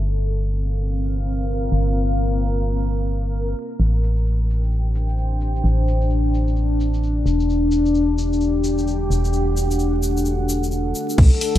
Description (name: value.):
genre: UK garage, two-step garage.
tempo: 130 BPM.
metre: 4/4.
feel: swing 62% on 16ths.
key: unclear.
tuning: A4 = 440 Hz.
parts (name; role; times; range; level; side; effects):
organ-like FM bass; bass; 0.0-11.6 s; E1 to B1; -20 LUFS; equal; sidechain pumping.
deep dark ambient pad; texture; 0.0-11.6 s; C4 to G5; -23 LUFS; left 2 dB; chorus, built-in reverb, sidechain pumping.
egg shaker; percussion; 3.8-11.2 s; none; -34 LUFS; left 2 dB; none.
electronic kick drum; drums; 11.2-11.3 s; none; -13 LUFS; equal; overdrive, studio reverb.
punchy analog drum machine; drums; 11.2-11.6 s; crash cymbal, hi-hat; -26 LUFS; left 3 dB; overdrive, low-pass filter on snare, studio reverb, low-pass filter on hats, low-pass filter on cymbals.
room: digital ambience.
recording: vinyl crackle, low-pass filter.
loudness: -18 LUFS.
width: side -13 dB against mid.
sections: 0.0-11.2 A section.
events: filter sweep 0.0-11.2.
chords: 0.0 Gm7; 3.8 Am7; 7.3 Em11.